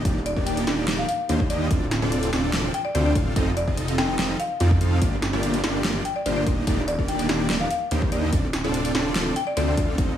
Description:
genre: future bass.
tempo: 145 BPM.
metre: 4/4.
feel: half-time.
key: unclear.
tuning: A4 = 441 Hz.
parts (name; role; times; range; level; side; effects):
dense compressed supersaw; riff; 0.0-10.1 s; Bb3 to F5; -26 LUFS; right 1 dB; sidechain pumping.
wide detuned saw bass; bass; 0.0-10.2 s; D1 to F2; -26 LUFS; equal; chorus, sidechain pumping.
electronic kick drum; drums; 0.1-10.1 s; none; -24 LUFS; equal; small room ambience.
pop drum kit; drums; 0.1-10.1 s; hi-hat, snare drum; -28 LUFS; equal; small room ambience.
buzzing marimba with medium hard mallets; melody; 0.3-9.9 s; D5 to G5; -29 LUFS; left 3 dB; sidechain pumping, dub echo.
room: light reverb.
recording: studio reverb.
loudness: -21 LUFS.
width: side -10 dB against mid.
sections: 0.0-10.2 A section.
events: none.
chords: 0.0 Ebmaj7; 1.7 Dm7; 3.4 F7; 5.0 Gm7; 6.5 Ebmaj7; 8.3 Dm7.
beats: | 0.05 0.47 0.88 1.29 | 1.71 2.12 2.53 2.95 | 3.36 3.77 4.19 4.60 | 5.02 5.43 5.84 6.26 | 6.67 7.08 7.50 7.91 | 8.33 8.74 9.15 9.57 | 9.98.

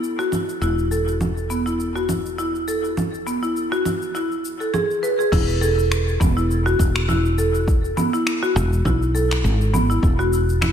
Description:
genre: organic downtempo.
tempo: 102 BPM.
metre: 4/4.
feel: swing 55% on 16ths.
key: E major.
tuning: A4 = 438 Hz.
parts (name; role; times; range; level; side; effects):
woody fretless electric bass; bass; 0.0-10.7 s; E1 to B1; -21 LUFS; equal; sidechain pumping.
deep house drum kit; drums; 0.0-10.7 s; congas, crash cymbal, finger snaps, shaker; -26 LUFS; right 1 dB; overdrive.
marimba with medium hard mallets; arpeggios; 0.2-10.7 s; B3 to B4; -22 LUFS; equal; diffuse ambient delay.
electronic kick drum; drums; 5.3-10.2 s; none; -20 LUFS; equal; overdrive.
room: moderate lush hall reverb, RT60 2.5 s.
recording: dreamy mix soaked in reverb.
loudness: -18 LUFS.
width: side -8 dB against mid.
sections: 0.0-5.3 A section; 5.3-10.7 B section.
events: none.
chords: 0.0 N.C.; 0.6 Esus4; 10.0 N.C..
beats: 0.03 | 0.62 1.21 1.79 2.38 | 2.97 3.56 4.15 4.73 | 5.32 5.91 6.50 7.09 | 7.67 8.26 8.85 9.44 | 10.03 10.62.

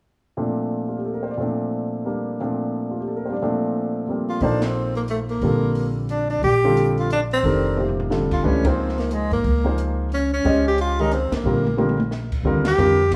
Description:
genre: modal jazz.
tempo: 179 BPM.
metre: 3/4.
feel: swing 62% on 8ths.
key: Bb major.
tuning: A4 = 443 Hz.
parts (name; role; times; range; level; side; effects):
warm baby grand piano; accompaniment; 0.4-13.0 s; Bb2 to Eb5; -26 LUFS; equal; none.
breathy tenor saxophone; melody; 4.3-13.2 s; Ab3 to G4; -24 LUFS; equal; none.
upright bass; bass; 4.4-13.2 s; F1 to Ab2; -26 LUFS; equal; none.
compact cocktail drum kit; drums; 4.4-13.2 s; crash cymbal, hi-hat, kick drum, ride cymbal, snare drum, toms; -31 LUFS; equal; none.
room: light reverb, studio reverb.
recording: rough home demo mix, small room ambience.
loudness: -22 LUFS.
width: mono.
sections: 0.4-4.4 A section; 4.4-12.4 B section.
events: band accent 4.6, 8.6, 11.3, 12.6; drum fill 7.8-8.1, 11.4-12.1.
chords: 0.4 Bbmaj9; 8.4 Dbmaj9; 11.4 Bb; 12.4 Ebmaj9.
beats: | 0.38 0.72 1.05 | 1.39 1.73 2.06 | 2.40 2.73 3.07 | 3.41 3.74 4.08 | 4.42 4.75 5.09 | 5.42 5.76 6.09 | 6.43 6.77 7.10 | 7.44 7.77 8.11 | 8.44 8.78 9.11 | 9.45 9.78 10.11 | 10.45 10.78 11.12 | 11.45 11.78 12.12 | 12.45 12.78 13.12.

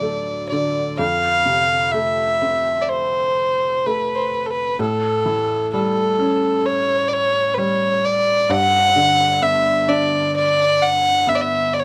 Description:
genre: celtic folk, Celtic slow air.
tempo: 64 BPM.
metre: 4/4.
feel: rubato.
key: unclear.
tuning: A4 = 440 Hz.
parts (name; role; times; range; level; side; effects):
dark fiddle; melody; 0.0-11.8 s; A4 to F#5; -19 LUFS; equal; none.
felt-muted upright piano; accompaniment; 0.0-11.8 s; D2 to D4; -27 LUFS; equal; none.
room: light reverb.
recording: none.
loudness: -18 LUFS.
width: mono.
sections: 1.0-11.8 A section.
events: none.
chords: 0.0 D; 1.0 Fmaj7; 4.8 A7; 8.5 Gmaj7.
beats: 0.02 | 0.99 1.94 2.90 3.86 | 4.79 5.72 6.66 7.58 | 8.50 9.41 10.34 11.27.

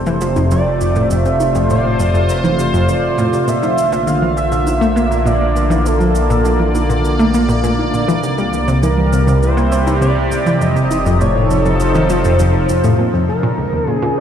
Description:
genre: ambient, sequencer-driven space music.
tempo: 101 BPM.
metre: 4/4.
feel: straight.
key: unclear.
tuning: A4 = 445 Hz.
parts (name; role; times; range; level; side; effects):
pulse-width lead; melody; 0.0-14.2 s; A4 to F5; -20 LUFS; right 1 dB; chorus, analog delay.
sweeping resonant pad; sustained chords; 0.0-14.2 s; C3 to D5; -17 LUFS; equal; chorus.
round analog bass; bass; 0.0-13.0 s; F1 to C2; -20 LUFS; equal; none.
analog pluck; riff; 0.1-14.1 s; Db2 to C4; -17 LUFS; equal; chorus, analog delay.
cabasa and congas; percussion; 0.1-13.0 s; none; -29 LUFS; equal; analog delay.
room: wet huge ambient reverb, RT60 8.3 s.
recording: played on a big sound system in a bare room, large studio reverb.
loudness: -12 LUFS.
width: side -9 dB against mid.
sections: 0.0-13.0 A section; 13.0-14.2 B section.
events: fade-in on analog synth bass 0.0-13.0.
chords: 0.0 F; 3.5 Bb; 8.2 C; 10.6 F7; 13.0 Bbm.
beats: 0.51 | 1.11 1.70 2.29 2.89 | 3.48 4.08 4.67 5.26 | 5.86 6.45 7.05 7.64 | 8.23 8.83 9.42 10.02 | 10.61 11.21 11.80 12.39 | 12.99 13.58 14.18.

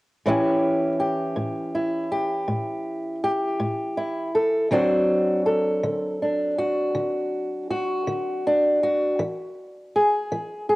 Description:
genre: blues.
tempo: 54 BPM (dotted quarters).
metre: 12/8.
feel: straight.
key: unclear.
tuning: A4 = 443 Hz.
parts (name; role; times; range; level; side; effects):
fingerpicked old ladder-braced acoustic guitar; accompaniment; 0.3-10.8 s; A2 to A4; -21 LUFS; equal; none.
room: wet spring reverb, RT60 1.9 s, studio reverb.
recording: home recording on cassette.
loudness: -21 LUFS.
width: side -20 dB against mid.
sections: 0.2-10.8 A section.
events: none.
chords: 0.2 A7; 4.7 D7; 9.2 E.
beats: | 0.24 1.35 2.47 3.59 | 4.71 5.83 6.96 8.08 | 9.20 10.32.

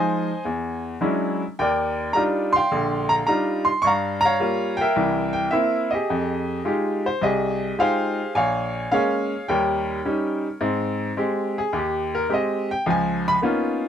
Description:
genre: solo jazz.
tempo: 106 BPM.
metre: 4/4.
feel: swing 69% on 8ths.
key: Ab major from 10.6 s.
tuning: A4 = 440 Hz.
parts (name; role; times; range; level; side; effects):
bright upright piano; solo; 0.0-13.8 s; Bb1 to Db6; -20 LUFS; equal; none.
room: little or no reverb.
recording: close, detailed microphones.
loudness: -20 LUFS.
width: side -9 dB against mid.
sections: 0.0-10.6 A section; 10.6-13.9 B section.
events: upright piano solo 10.6-13.9.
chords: 0.4 E13; 1.6 Ebmaj9; 3.8 Gm7b5; 5.0 C7; 6.1 Fm9; 8.4 Bbm7; 9.5 Eb7; 10.6 Abmaj7; 12.9 Db13.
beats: 0.45 1.01 | 1.58 2.14 2.71 3.27 | 3.84 4.40 4.96 5.53 | 6.09 6.66 7.22 7.79 | 8.35 8.91 9.48 10.04 | 10.61 11.17 11.73 12.30 | 12.86 13.42.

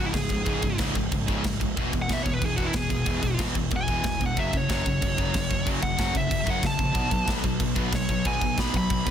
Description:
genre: heavy metal.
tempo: 185 BPM.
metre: 4/4.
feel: straight.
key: unclear.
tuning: A4 = 438 Hz.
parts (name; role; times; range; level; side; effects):
high-gain lead guitar; melody; 0.0-9.1 s; E4 to B5; -30 LUFS; equal; distortion, ping-pong delay.
high-gain distorted guitar; riff; 0.0-9.1 s; C#2 to B3; -31 LUFS; left 13 dB; distortion.
sludgy distorted guitar; riff; 0.0-9.1 s; C#2 to B3; -31 LUFS; right 10 dB; overdrive.
fuzz picked electric bass; bass; 0.0-9.1 s; C#1 to B1; -32 LUFS; equal; overdrive.
tight metal drum kit; drums; 0.1-9.1 s; crash cymbal, kick drum, snare drum; -28 LUFS; equal; none.
room: little or no reverb.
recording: dense, heavily limited modern master.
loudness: -23 LUFS.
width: side -9 dB against mid.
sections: 0.0-9.1 A section.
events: lead electric guitar solo 0.0-9.1.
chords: 0.0 C#5; 1.8 E; 4.4 F#5; 7.0 B5.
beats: 0.15 | 0.47 0.80 1.12 1.45 | 1.77 2.09 2.42 2.74 | 3.07 3.39 3.72 4.04 | 4.37 4.69 5.01 5.34 | 5.66 5.99 6.31 6.63 | 6.96 7.28 7.61 7.93 | 8.26 8.58 8.90.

